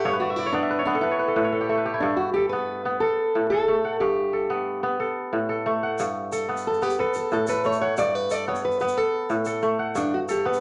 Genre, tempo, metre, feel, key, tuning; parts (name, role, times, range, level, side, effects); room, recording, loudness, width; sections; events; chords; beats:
west african traditional, West African string and xylophone music; 121 BPM (dotted quarters); 12/8; straight; A4 = 444 Hz
fingerpicked plugged-in steel-string acoustic guitar; melody; 0.0-10.6 s; D4 to D5; -27 LUFS; equal
kora; arpeggios; 0.0-10.6 s; G2 to F#5; -27 LUFS; equal
tube shaker; percussion; 6.0-10.6 s; -45 LUFS; equal
moderate large studio reverb, RT60 0.8 s; -24 LUFS; mono
0.0-10.6 A section
kora fill 0.0-2.0
0.0 G; 1.0 N.C.; 2.0 G; 3.0 F#m/A; 4.0 G; 5.0 F#m/A; 6.0 G; 7.0 A69; 8.0 G; 9.0 F#m/A; 10.0 G
| 0.05 0.54 1.04 1.53 | 2.03 2.52 3.02 3.51 | 4.01 4.50 5.00 5.50 | 5.99 6.49 6.98 7.48 | 7.97 8.47 8.97 9.46 | 9.96 10.45